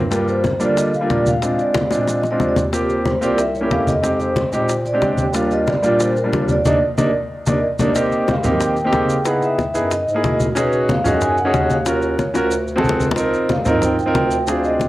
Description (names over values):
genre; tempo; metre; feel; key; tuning
Afro-Cuban jazz; 184 BPM; 4/4; straight; Eb major; A4 = 439 Hz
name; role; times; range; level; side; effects
mellow bass clarinet; bass; 0.0-14.9 s; C2 to Eb3; -24 LUFS; equal; none
vibraphone with soft mallets; melody; 0.1-14.9 s; Bb4 to G#5; -21 LUFS; equal; none
clear concert grand piano; accompaniment; 0.1-14.8 s; G3 to Bb4; -19 LUFS; right 1 dB; none
bongos; percussion; 0.1-14.9 s; none; -26 LUFS; left 4 dB; none
congas; percussion; 0.1-14.9 s; none; -23 LUFS; equal; none
maracas; percussion; 0.1-14.9 s; none; -34 LUFS; right 4 dB; none
room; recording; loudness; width
moderate spring reverb, RT60 2.2 s; home recording on cassette; -15 LUFS; side -16 dB against mid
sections
0.0-8.0 A section; 8.0-14.9 B section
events
drum fill 1.8-2.7, 7.5-8.0, 12.4-13.2; band accent 6.7-8.0; grand piano fill 7.0-8.0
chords
0.1 Gm7; 1.4 Bb7; 2.7 Eb69; 3.4 C7b9; 4.0 Fm7; 4.7 Bb13; 5.3 Ebmaj7; 8.0 Eb13; 9.3 Dbm9; 9.9 Gb13; 10.6 B69; 11.9 Ebm9; 12.5 D7#11; 13.2 Dbmaj13